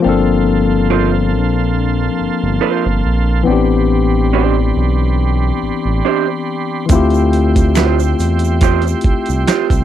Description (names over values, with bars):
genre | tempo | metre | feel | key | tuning
R&B, neo-soul | 70 BPM | 4/4 | swing 54% on 16ths | D minor | A4 = 440 Hz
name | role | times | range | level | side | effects
barky tine electric piano | accompaniment | 0.0-9.8 s | E3 to A4 | -16 LUFS | left 6 dB | none
tonewheel organ | sustained chords | 0.0-9.8 s | Bb3 to C6 | -24 LUFS | right 7 dB | chorus vibrato, wide subtle chorus
smooth synth bass | bass | 0.1-9.8 s | G1 to E2 | -16 LUFS | right 1 dB | none
electric guitar through a small old amp | second line | 0.9-9.7 s | D4 to C5 | -16 LUFS | right 15 dB | none
dusty soul sampler-style drum kit | drums | 6.9-9.8 s | hi-hat, kick drum, snare drum | -15 LUFS | right 1 dB | overdrive
egg shaker and finger snaps | percussion | 6.9-9.8 s | none | -30 LUFS | equal | none
room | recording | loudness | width
little or no reverb | dry, close 1970s-style studio recording | -12 LUFS | side -11 dB against mid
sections
0.0-9.8 A section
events
none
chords
0.0 Gm11; 3.5 Am11; 6.9 Dm11